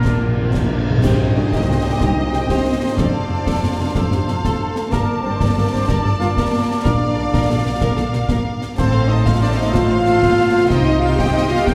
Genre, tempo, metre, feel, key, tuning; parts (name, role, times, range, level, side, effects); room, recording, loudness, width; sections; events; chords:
cinematic, heroic adventure film score; 124 BPM (dotted quarters); 12/8; straight; Bb major; A4 = 445 Hz
clear symphonic violin section; melody; 0.0-11.7 s; F4 to A5; -35 LUFS; equal
mellow cor anglais; second line; 0.0-11.7 s; Bb3 to Eb5; -32 LUFS; equal
mellow hollow flute section; second line; 0.0-11.7 s; Bb4 to A5; -32 LUFS; equal
warm symphonic violin section; second line; 0.0-11.7 s; D4 to G5; -33 LUFS; equal
warm symphonic viola section; accompaniment; 0.0-11.7 s; Bb3 to Eb5; -31 LUFS; equal
dark French horn section; sustained chords; 0.0-11.7 s; A3 to G4; -24 LUFS; equal
dark trumpet section; stabs; 0.0-11.7 s; A4 to G5; -30 LUFS; equal
warm studio cello section; bass; 0.0-11.7 s; C2 to C3; -25 LUFS; equal
warm symphonic double bass section; bass; 0.0-11.7 s; F1 to C2; -26 LUFS; equal
concert snare drum, concert bass drum and clash cymbals; drums; 0.0-11.7 s; -24 LUFS; equal
timpani; percussion; 0.0-1.0, 6.9-7.3 s; Bb2; -24 LUFS; equal
tam-tam; percussion; 1.0-2.3 s; -28 LUFS; equal
wet scoring stage reverb, RT60 1.9 s; heard from further back in the room; -17 LUFS; mono
0.0-1.0 A section; 1.0-11.7 B section
timpani fill 0.0-1.0; band accent 1.0-1.4
0.0 Bb; 1.0 Cm; 3.0 F; 4.9 Gmadd9; 6.9 Bb; 8.8 F/A; 10.7 Cm